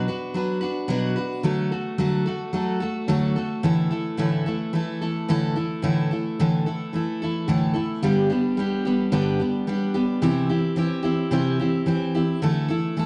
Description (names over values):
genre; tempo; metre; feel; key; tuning
rock; 109 BPM; 4/4; straight; unclear; A4 = 440 Hz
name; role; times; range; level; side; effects
picked steel-string acoustic guitar; solo; 0.0-13.1 s; G2 to B4; -24 LUFS; equal; slapback echo
room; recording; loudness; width
moderate large studio reverb, RT60 1.3 s; nothing above 10.6 kHz; -24 LUFS; mono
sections
0.0-8.0 A section; 8.0-13.1 B section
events
none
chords
0.0 Bm; 1.4 D; 3.6 Asus4; 8.0 G; 10.2 C; 12.4 Dsus2